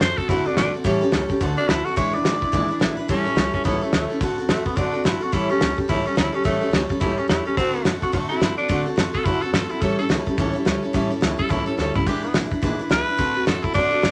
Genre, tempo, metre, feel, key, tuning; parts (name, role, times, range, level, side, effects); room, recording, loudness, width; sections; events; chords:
rockabilly; 214 BPM; 4/4; swing 60% on 8ths; A mixolydian; A4 = 440 Hz
raspy tenor saxophone; melody; 0.0-14.1 s; A3 to D5; -27 LUFS; equal
picked steel-string acoustic guitar; accompaniment; 0.0-14.1 s; A2 to B4; -26 LUFS; equal
upright bass; bass; 0.0-14.1 s; E1 to G2; -33 LUFS; equal
cloth-damped thuddy drum kit; drums; 0.0-14.1 s; hi-hat, kick drum, snare drum, toms; -25 LUFS; equal
moderate small room reverb, RT60 0.5 s; -22 LUFS; mono
0.0-3.1 A section; 3.1-14.1 B section
tenor saxophone solo 0.0-3.1; drum fill 11.8
0.0 D7; 0.9 A7; 1.4 D7; 2.0 E7; 3.1 A7; 4.2 D7; 5.3 A7; 7.6 D7; 9.8 A7; 12.1 E7; 13.2 D7